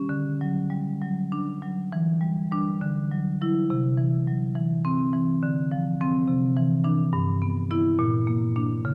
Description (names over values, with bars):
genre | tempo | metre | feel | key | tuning
classical, contemporary piece for solo marimba | 69 BPM (dotted quarters) | 6/8 | uneven beats, rubato | unclear | A4 = 440 Hz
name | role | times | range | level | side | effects
marimba with medium hard mallets | solo | 0.0-8.9 s | G2 to E4 | -25 LUFS | equal | none
room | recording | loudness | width
wet recital hall reverb, RT60 1.8 s | none | -25 LUFS | mono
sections
0.1-8.9 A section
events
none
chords
0.1 D; 1.9 Em7; 2.8 Dadd9; 3.7 C; 5.4 Dm7; 6.3 Cadd9; 7.1 G6; 8.0 Bb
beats
| 0.11 1.01 | 1.91 2.81 | 3.69 4.56 | 5.42 6.28 | 7.12 7.97 | 8.84